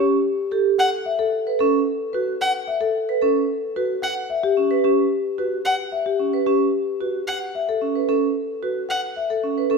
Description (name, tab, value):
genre	classical, minimalist pattern music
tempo	111 BPM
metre	3/4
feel	straight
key	unclear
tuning	A4 = 443 Hz
part	marimba with medium mallets	melody	0.0-9.8 s	G4 to F#5	-22 LUFS	left 6 dB	none
part	vibraphone with medium mallets	arpeggios	0.0-9.8 s	C#4 to B4	-22 LUFS	right 9 dB	none
part	clear violin	arpeggios	0.8-9.0 s	F#5	-25 LUFS	equal	none
room	moderate scoring stage reverb, RT60 1.8 s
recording	minimal, uncompressed stereo recording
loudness	-19 LUFS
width	side -4 dB against mid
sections	0.0-9.8 A section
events	none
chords	0.0 A7; 0.8 B7sus2